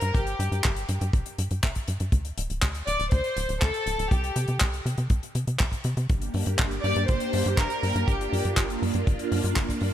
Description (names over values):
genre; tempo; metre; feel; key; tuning
italo disco; 121 BPM; 4/4; straight; G minor; A4 = 440 Hz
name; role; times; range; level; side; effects
warm studio violin section; melody; 0.0-8.6 s; G4 to D5; -30 LUFS; equal; tape echo
tight sequencer bass; bass; 0.0-9.9 s; D1 to C3; -28 LUFS; equal; tube saturation
damped 70s drum kit; drums; 0.0-9.9 s; handclaps, hi-hat; -32 LUFS; left 1 dB; none
kick drum; drums; 0.1-9.8 s; none; -24 LUFS; equal; none
phased string machine; sustained chords; 6.1-9.9 s; Bb3 to G4; -30 LUFS; right 1 dB; ensemble chorus, phaser
room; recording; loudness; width
light reverb; none; -23 LUFS; side -11 dB against mid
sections
0.0-9.9 A section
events
none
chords
0.0 N.C.; 2.1 D5; 4.1 C5; 6.1 Gm